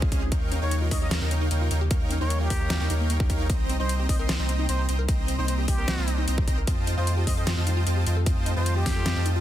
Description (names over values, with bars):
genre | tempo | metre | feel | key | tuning
future bass | 151 BPM | 4/4 | half-time | unclear | A4 = 440 Hz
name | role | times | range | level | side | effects
airy breathy pad | sustained chords | 0.0-9.4 s | C3 to F4 | -37 LUFS | equal | chorus, phaser, sidechain pumping
wide unison pluck | arpeggios | 0.0-9.4 s | Bb3 to Bb4 | -38 LUFS | left 1 dB | sidechain pumping, dub echo
dense compressed supersaw | riff | 0.0-9.4 s | C4 to C6 | -32 LUFS | right 1 dB | sidechain pumping
saturated sub bass | bass | 0.0-9.4 s | C2 to F2 | -25 LUFS | equal | sidechain pumping
electronic kick drum | drums | 0.0-8.9 s | none | -26 LUFS | equal | overdrive
dubstep drum kit | drums | 0.1-9.3 s | hi-hat, ride cymbal, snare drum | -31 LUFS | left 1 dB | overdrive
trumpet with plunger mute | melody | 0.6-9.3 s | G4 to Eb5 | -36 LUFS | equal | sidechain pumping, ping-pong delay
room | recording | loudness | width
little or no reverb | dense, heavily limited modern master | -22 LUFS | side -12 dB against mid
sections
0.0-9.4 A section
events
none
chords
0.3 Eb9; 3.5 Cm7; 6.7 F9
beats
| 0.32 0.71 1.11 1.51 | 1.91 2.30 2.70 3.10 | 3.50 3.89 4.29 4.69 | 5.09 5.48 5.88 6.28 | 6.67 7.07 7.47 7.87 | 8.27 8.66 9.06